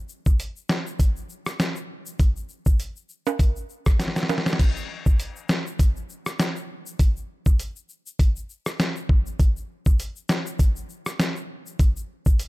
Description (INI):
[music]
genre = dancehall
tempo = 100 BPM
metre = 4/4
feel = swing 56% on 16ths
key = none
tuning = none
[part]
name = egg shaker and timbales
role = percussion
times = 0.1-12.5 s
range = none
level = -34 LUFS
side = right 5 dB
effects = none
[part]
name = dusty soul sampler-style drum kit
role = drums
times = 0.3-12.5 s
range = crash cymbal, hi-hat, kick drum, rim click, snare drum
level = -21 LUFS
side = equal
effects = none
[sound]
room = digital ambience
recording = dark, warm production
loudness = -22 LUFS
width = side -19 dB against mid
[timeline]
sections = 0.0-4.6 A section; 4.6-12.5 B section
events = drum fill 4.0-4.6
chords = none